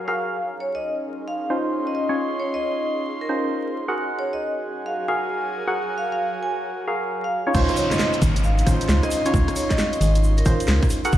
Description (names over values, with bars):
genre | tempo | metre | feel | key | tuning
UK garage, two-step garage | 134 BPM | 4/4 | swing 65% on 16ths | Db major | A4 = 440 Hz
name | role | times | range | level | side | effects
ethereal airy pad | sustained chords | 0.0-11.2 s | Gb3 to F6 | -36 LUFS | right 2 dB | ensemble chorus, built-in reverb, vintage 12-bit sampler grit, sidechain pumping
airy breathy pad | texture | 0.0-11.2 s | Gb3 to C6 | -32 LUFS | equal | chorus, sidechain pumping
vibraphone with medium hard mallets | melody | 0.1-10.8 s | Bb4 to Ab5 | -28 LUFS | equal | dub echo
percussive organ stab | stabs | 0.1-11.2 s | Db4 to Gb5 | -26 LUFS | equal | chorus, dub echo
organ-like FM bass | bass | 7.5-11.2 s | Gb1 to Db2 | -19 LUFS | equal | sidechain pumping
electronic kick drum | drums | 7.5-11.2 s | none | -21 LUFS | equal | none
garage drum kit | drums | 7.5-11.1 s | crash cymbal, hi-hat, rim click, snare drum | -27 LUFS | equal | none
tube shaker | percussion | 7.5-11.2 s | none | -38 LUFS | right 1 dB | none
downlifter | sound effects | 7.5-11.1 s | none | -30 LUFS | left 1 dB | none
room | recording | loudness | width
light reverb, digital ambience | played on a big sound system in a bare room, large studio reverb, vinyl crackle | -20 LUFS | side -12 dB against mid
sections
0.0-7.5 A section; 7.5-11.2 B section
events
drop 7.5-11.2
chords
0.4 Dbmaj9; 4.0 Gbmaj9; 7.5 Dbmaj9